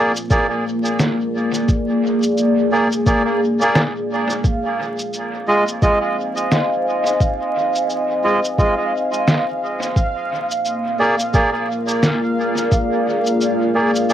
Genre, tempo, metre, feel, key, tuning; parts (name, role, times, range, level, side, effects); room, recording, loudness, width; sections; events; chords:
ambient dub; 87 BPM; 4/4; swing 59% on 16ths; A4 = 437 Hz
deep dark ambient pad; sustained chords; 0.0-14.1 s; Bb3 to Ab5; -20 LUFS; left 1 dB; chorus, built-in reverb, cassette tape
melodica; stabs; 0.0-14.1 s; Ab3 to Eb5; -20 LUFS; right 1 dB; cassette tape, dub echo
electronic shaker and snare drum; drums; 0.2-14.1 s; -22 LUFS; equal; cassette tape, dub echo
electronic kick drum; drums; 0.3-12.9 s; -17 LUFS; equal; cassette tape
bubbling stepped-filter texture; texture; 4.4-14.1 s; F5; -24 LUFS; right 3 dB; chorus, built-in reverb, cassette tape
moderate small room reverb, RT60 0.5 s; home recording on cassette, vinyl crackle; -16 LUFS; side -10 dB against mid
0.0-14.1 A section
0.0 Bb7; 4.4 Fm7; 10.0 Bb7